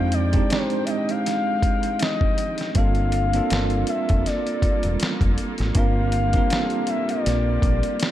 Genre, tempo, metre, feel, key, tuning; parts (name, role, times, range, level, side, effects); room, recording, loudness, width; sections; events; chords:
R&B, neo-soul; 80 BPM; 4/4; swing 55% on 16ths; A4 = 444 Hz
gliding portamento lead; melody; 0.0-8.1 s; C5 to F5; -26 LUFS; left 5 dB; chorus, slapback echo
bell-like tine electric piano; accompaniment; 0.0-8.1 s; Ab3 to Bb4; -26 LUFS; right 5 dB; fast stereo tremolo
bright studio string section; sustained chords; 0.0-8.1 s; Eb3 to G5; -32 LUFS; right 1 dB
deep dub fingered electric bass; bass; 0.0-7.8 s; E1 to F2; -23 LUFS; equal
dusty soul sampler-style drum kit; drums; 0.1-8.1 s; hi-hat, kick drum, snare drum; -23 LUFS; equal
light reverb; dark, warm production; -19 LUFS; side -13 dB against mid
0.0-8.1 A section
0.0 Fm9; 2.8 Gm9